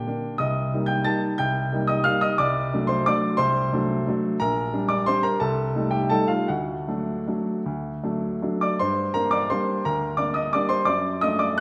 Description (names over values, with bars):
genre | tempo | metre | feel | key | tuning
classical, piano waltz | 153-189 BPM | 3/4 | rubato | G minor | A4 = 442 Hz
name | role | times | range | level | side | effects
warm baby grand piano | solo | 0.0-11.6 s | Bb1 to A6 | -24 LUFS | equal | none
room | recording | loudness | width
wet recital hall reverb, RT60 1.8 s | none | -24 LUFS | mono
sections
0.0-8.8 A section; 8.8-11.6 B section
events
none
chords
0.4 Cm7; 2.4 D7/C; 4.4 Gm/Bb; 5.4 Am7b5/C; 6.5 D; 8.8 Gm; 10.9 D/F#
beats
0.05 | 0.38 0.71 1.04 | 1.37 1.71 2.05 | 2.38 2.71 3.04 | 3.37 3.71 4.06 | 4.40 4.73 5.08 | 5.42 5.76 6.12 | 6.50 6.88 7.27 | 7.65 8.03 8.41 | 8.78 9.13 9.49 | 9.84 10.18 10.54 | 10.88 11.22 11.59